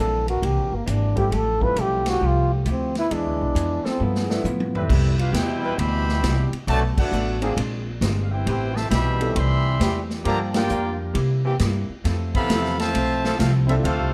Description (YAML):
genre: jazz, big band swing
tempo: 134 BPM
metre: 4/4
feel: swing 66% on 8ths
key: C major from 4.9 s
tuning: A4 = 440 Hz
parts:
  - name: breathy trombone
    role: melody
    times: 0.0-4.8 s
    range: A3 to B4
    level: -27 LUFS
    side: equal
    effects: none
  - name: vintage hollow-body jazz guitar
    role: accompaniment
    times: 0.0-14.1 s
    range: G2 to B4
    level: -34 LUFS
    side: equal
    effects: none
  - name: warm upright piano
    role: accompaniment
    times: 0.0-4.4, 7.4-13.8 s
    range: E3 to Bb4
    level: -31 LUFS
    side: equal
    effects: none
  - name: upright bass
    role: bass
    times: 0.0-14.1 s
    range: G1 to C3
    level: -25 LUFS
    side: equal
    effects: none
  - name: bright trombone section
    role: sustained chords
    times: 0.3-14.0 s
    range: C3 to B4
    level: -34 LUFS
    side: equal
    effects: none
  - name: swinging big-band drum kit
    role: drums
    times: 0.3-14.0 s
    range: crash cymbal, hi-hat, kick drum, ride cymbal, snare drum, toms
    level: -30 LUFS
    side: equal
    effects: none
  - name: clear trumpet section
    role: melody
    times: 4.8-14.1 s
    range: C4 to C6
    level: -30 LUFS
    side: equal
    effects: none
  - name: bright trombone section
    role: second line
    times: 4.8-14.1 s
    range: B2 to G4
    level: -31 LUFS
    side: equal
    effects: none
room: light reverb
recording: none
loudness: -22 LUFS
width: mono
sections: 0.0-4.9 A section; 4.9-14.1 B section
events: trombone solo 0.0-4.9; drum fill 4.0-4.9; band accent 6.9, 10.5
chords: 0.0 C9; 1.3 Fmaj9; 3.1 E7; 4.0 G13; 4.9 Cmaj7; 6.7 Bm7; 7.6 Bb9; 8.5 Am9; 10.3 Gm7; 11.2 C7; 12.0 Fmaj7